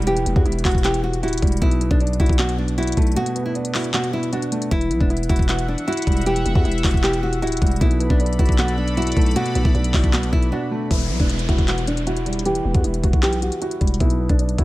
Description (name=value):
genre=hip hop, trap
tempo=155 BPM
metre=4/4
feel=half-time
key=E minor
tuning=A4 = 440 Hz
part: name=nylon-string guitar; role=melody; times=0.0-14.6 s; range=D4 to G4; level=-24 LUFS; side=equal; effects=low-pass filter, tape echo
part: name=dark grand piano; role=accompaniment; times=0.0-14.6 s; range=B2 to F#4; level=-25 LUFS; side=right 1 dB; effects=low-pass filter
part: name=growling 808-style bass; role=bass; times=0.0-14.6 s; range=D1 to E2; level=-22 LUFS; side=equal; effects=none
part: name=trap drum kit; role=drums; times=0.0-14.6 s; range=handclaps, hi-hat, kick drum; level=-20 LUFS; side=equal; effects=vintage 12-bit sampler grit
part: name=downlifter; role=sound effects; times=0.0-1.6, 10.9-14.0 s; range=none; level=-33 LUFS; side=left 1 dB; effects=none
part: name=sweeping resonant pad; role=sustained chords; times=4.7-10.9 s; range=A4 to B5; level=-32 LUFS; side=left 2 dB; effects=chorus
room=little or no reverb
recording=none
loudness=-17 LUFS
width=side -18 dB against mid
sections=0.0-10.9 A section; 10.9-14.6 B section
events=break 3.2-4.7, 10.5-10.9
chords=0.0 Emadd9; 1.6 Bm7; 4.7 Emadd9; 7.8 Bm7; 10.9 Emadd9; 14.0 Bm